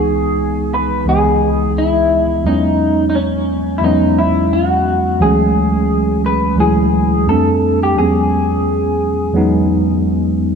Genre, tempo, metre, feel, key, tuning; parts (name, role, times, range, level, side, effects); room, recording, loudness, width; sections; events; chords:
lo-fi hip hop; 87 BPM; 4/4; swing 58% on 16ths; E major; A4 = 441 Hz
electric guitar through a small old amp; melody; 0.0-10.0 s; C#4 to B4; -16 LUFS; equal; analog chorus, low-pass filter, diffuse ambient delay
tine electric piano; accompaniment; 0.0-10.6 s; C#2 to D#5; -14 LUFS; equal; medium stereo tremolo, low-pass filter
moderate lush hall reverb, RT60 2.4 s; dreamy mix soaked in reverb, cassette tape; -12 LUFS; side -6 dB against mid
0.0-10.6 A section
0.0 C#m9; 2.4 E69; 5.2 Dmaj9#11; 7.3 F69; 8.0 E69